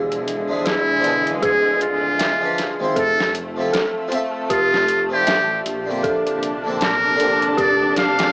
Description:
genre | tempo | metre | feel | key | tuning
trip hop | 78 BPM | 4/4 | swing 59% on 16ths | unclear | A4 = 439 Hz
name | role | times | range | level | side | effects
harpsichord | accompaniment | 0.0-8.3 s | D3 to E5 | -25 LUFS | equal | tremolo, cassette tape, tape echo
muted studio string section | sustained chords | 0.0-8.3 s | C3 to A5 | -26 LUFS | equal | cassette tape
dark detuned synth bell | arpeggios | 0.0-8.3 s | G4 to A5 | -23 LUFS | equal | chorus, cassette tape, tape echo
dark detuned saw bass | bass | 0.0-8.3 s | D1 to Bb1 | -31 LUFS | equal | none
boom bap sampler-style drum kit | drums | 0.1-8.3 s | hi-hat, kick drum, snare drum | -24 LUFS | equal | small room reverb, cassette tape
trumpet with metal mute | melody | 0.7-8.3 s | E4 to F5 | -20 LUFS | equal | cassette tape, tape echo
room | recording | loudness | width
light reverb, studio reverb | home recording on cassette, small speaker sound | -16 LUFS | side -31 dB against mid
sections
0.0-8.3 A section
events
none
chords
0.0 E7b9; 3.0 Fmaj7; 6.0 Bbmaj9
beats
0.66 1.43 2.19 | 2.96 3.73 4.50 5.27 | 6.04 6.81 7.58

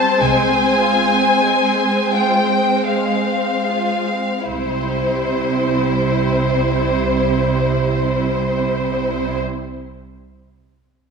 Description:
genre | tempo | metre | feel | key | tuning
classical, slow romantic movement for string orchestra | 35-50 BPM | 3/4 | rubato | C major | A4 = 440 Hz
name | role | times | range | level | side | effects
warm studio violin section | melody | 0.0-9.4 s | C5 to A5 | -20 LUFS | left 2 dB | none
rich studio violin section | second line | 0.0-9.4 s | Ab3 to C5 | -21 LUFS | left 1 dB | none
warm studio viola section | accompaniment | 0.0-9.4 s | G3 to C4 | -22 LUFS | right 2 dB | none
warm studio cello section | bass | 0.2-9.4 s | C3 | -26 LUFS | right 6 dB | none
warm studio double bass section | bass | 0.2-9.4 s | C2 | -23 LUFS | right 5 dB | none
room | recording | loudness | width
wet scoring stage reverb, RT60 1.7 s | minimal, uncompressed stereo recording | -15 LUFS | side -5 dB against mid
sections
0.0-4.5 A section; 4.5-8.8 B section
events
slowing down 0.0-4.5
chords
0.2 Fm/C; 4.5 C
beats
| 0.20 1.46 2.88 | 4.47 5.90 7.35

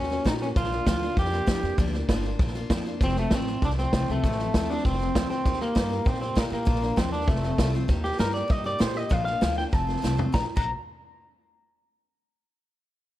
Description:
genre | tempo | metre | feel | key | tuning
rockabilly | 196 BPM | 4/4 | straight | Bb major | A4 = 439 Hz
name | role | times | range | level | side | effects
electric guitar through a small old amp | melody | 0.0-10.7 s | A3 to Bb5 | -29 LUFS | equal | tape echo
picked steel-string acoustic guitar | accompaniment | 0.0-10.7 s | F2 to G4 | -33 LUFS | left 4 dB | none
upright bass | bass | 0.0-10.7 s | F1 to Bb2 | -30 LUFS | equal | none
vintage drum kit | drums | 0.0-10.6 s | crash cymbal, hi-hat, kick drum, snare drum, toms | -26 LUFS | equal | none
room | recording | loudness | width
small room ambience | none | -23 LUFS | side -14 dB against mid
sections
0.0-7.9 A section; 7.9-10.3 B section; 10.3-11.6 C section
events
drum fill 10.0-10.3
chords
0.0 Ebm7; 0.6 Bb; 3.0 F; 5.5 Eb; 6.7 Bb; 7.3 F; 7.9 Eb; 9.1 Bb; 9.7 F; 10.3 Bb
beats
0.26 | 0.56 0.87 1.17 1.48 | 1.79 2.09 2.40 2.70 | 3.01 3.31 3.62 3.93 | 4.23 4.54 4.84 5.15 | 5.45 5.76 6.06 6.37 | 6.67 6.98 7.28 7.59 | 7.89 8.20 8.50 8.81 | 9.11 9.42 9.73 10.03 | 10.34 10.64

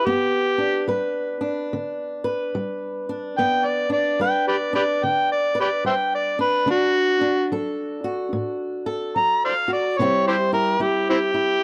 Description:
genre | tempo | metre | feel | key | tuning
acoustic country blues, solo or duo | 73 BPM | 4/4 | swing 63% on 8ths | G major | A4 = 439 Hz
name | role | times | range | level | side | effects
overdriven harmonica | melody | 0.0-11.6 s | C4 to Bb5 | -22 LUFS | equal | none
fingerpicked swing-style acoustic guitar | accompaniment | 0.0-11.6 s | G2 to B4 | -27 LUFS | equal | none
room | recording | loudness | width
small room ambience | dry, close 1970s-style studio recording | -22 LUFS | mono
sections
0.0-11.6 A section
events
none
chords
0.1 G; 6.7 D; 10.0 C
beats
| 0.06 0.89 1.72 2.54 | 3.37 4.20 5.02 5.85 | 6.68 7.50 8.33 9.15 | 9.98 10.80 11.63

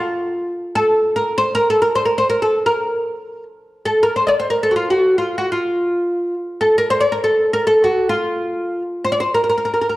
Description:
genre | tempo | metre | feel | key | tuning
Turkish makam ensemble | free time | none | none | F makam hicaz | A4 = 440 Hz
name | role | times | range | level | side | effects
oud | solo | 0.0-10.0 s | F4 to Eb5 | -15 LUFS | equal | none
room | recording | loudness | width
moderate recital hall reverb, RT60 1.3 s | dark, warm production | -15 LUFS | side -17 dB against mid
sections
0.0-10.0 A section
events
none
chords
none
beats
free time

